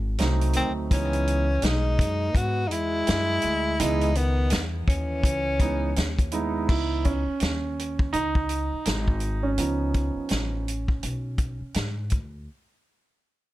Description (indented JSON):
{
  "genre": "hip hop, jazz-hop",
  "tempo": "83 BPM",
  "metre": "4/4",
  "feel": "swing 60% on 16ths",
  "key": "C# minor",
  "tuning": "A4 = 440 Hz",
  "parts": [
    { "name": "upright bass", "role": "bass", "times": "0.0-12.5 s", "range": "G#1 to G#2", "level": "-28 LUFS", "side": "equal", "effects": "none" },
    { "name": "dark baby grand piano", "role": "accompaniment", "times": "0.2-11.7 s", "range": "E3 to E4", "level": "-28 LUFS", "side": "right 4 dB", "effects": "none" },
    { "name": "vintage drum kit", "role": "drums", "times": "0.2-12.3 s", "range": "crash cymbal, hi-hat, kick drum, snare drum", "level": "-25 LUFS", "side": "equal", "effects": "none" },
    { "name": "breathy trombone", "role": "second line", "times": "0.5-6.3 s", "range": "D#3 to B3", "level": "-34 LUFS", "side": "left 5 dB", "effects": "tape echo" },
    { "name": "breathy tenor saxophone", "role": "melody", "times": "0.6-6.3 s", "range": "B3 to F#4", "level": "-27 LUFS", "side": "equal", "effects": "tape echo" }
  ],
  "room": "light reverb",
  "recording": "none",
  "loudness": "-23 LUFS",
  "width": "side -16 dB against mid",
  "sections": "0.0-6.7 A section; 6.7-12.5 B section",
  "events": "grand piano solo 6.7-12.5",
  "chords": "0.0 G#7b9; 0.9 C#m9; 9.6 C#7"
}